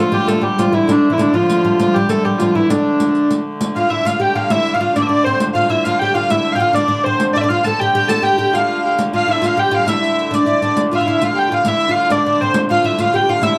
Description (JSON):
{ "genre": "medieval dance", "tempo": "134 BPM (dotted quarters)", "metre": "6/8", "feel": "straight", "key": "D minor", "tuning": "A4 = 440 Hz", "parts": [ { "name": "warm hurdy-gurdy", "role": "melody", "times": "0.0-13.6 s", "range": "D4 to A5", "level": "-18 LUFS", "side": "equal", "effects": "none" }, { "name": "oud", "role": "second line", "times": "0.0-13.6 s", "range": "D3 to A4", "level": "-23 LUFS", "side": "equal", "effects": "none" }, { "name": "rich fiddle", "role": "second line", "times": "0.0-13.6 s", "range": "G3 to A4", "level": "-26 LUFS", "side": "equal", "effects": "none" }, { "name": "warm hurdy-gurdy", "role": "drone", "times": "0.0-13.6 s", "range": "D3 to A3", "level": "-27 LUFS", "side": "equal", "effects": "none" }, { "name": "riq", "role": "percussion", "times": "0.3-13.6 s", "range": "none", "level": "-26 LUFS", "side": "equal", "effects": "none" } ], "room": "wet small room reverb, RT60 0.6 s", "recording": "heard from further back in the room", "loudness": "-16 LUFS", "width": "mono", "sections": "0.0-3.6 A section; 3.6-10.8 B section; 10.8-13.6 B section", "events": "none", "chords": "none" }